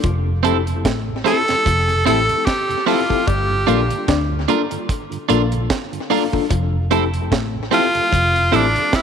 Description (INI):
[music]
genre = lovers rock reggae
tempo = 74 BPM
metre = 4/4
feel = swing 57% on 16ths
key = F major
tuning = A4 = 440 Hz
[part]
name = electric guitar through a small old amp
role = riff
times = 0.0-8.7 s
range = F3 to D4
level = -27 LUFS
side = left 10 dB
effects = none
[part]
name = vintage muted fingered electric bass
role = bass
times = 0.0-8.7 s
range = F1 to D2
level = -21 LUFS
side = equal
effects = none
[part]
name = deep reggae drum kit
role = drums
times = 0.0-9.0 s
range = hi-hat, kick drum, snare drum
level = -23 LUFS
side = right 2 dB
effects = tape echo
[part]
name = mellow tonewheel organ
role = accompaniment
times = 0.3-8.8 s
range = F2 to F4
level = -30 LUFS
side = right 8 dB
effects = chorus vibrato, stopped rotary speaker, tape echo
[part]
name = twelve-string electric guitar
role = stabs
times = 0.4-8.7 s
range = C4 to Bb4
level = -23 LUFS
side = right 11 dB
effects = spring reverb
[part]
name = mellow tine electric piano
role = accompaniment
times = 0.5-8.8 s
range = Bb3 to A4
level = -24 LUFS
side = left 12 dB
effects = medium stereo tremolo, tape echo
[part]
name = edgy tenor saxophone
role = melody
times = 1.3-9.0 s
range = D4 to A4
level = -18 LUFS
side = equal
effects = tape echo
[sound]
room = moderate echo chamber reverb, RT60 2.5 s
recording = 1960s-style stereo with parts hard left and right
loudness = -15 LUFS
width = side -7 dB against mid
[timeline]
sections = 0.0-9.0 A section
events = none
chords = 0.0 Fmaj7; 3.3 Gm7; 6.5 Fmaj7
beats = | 0.04 0.85 1.66 2.47 | 3.27 4.08 4.89 5.70 | 6.51 7.32 8.12 8.93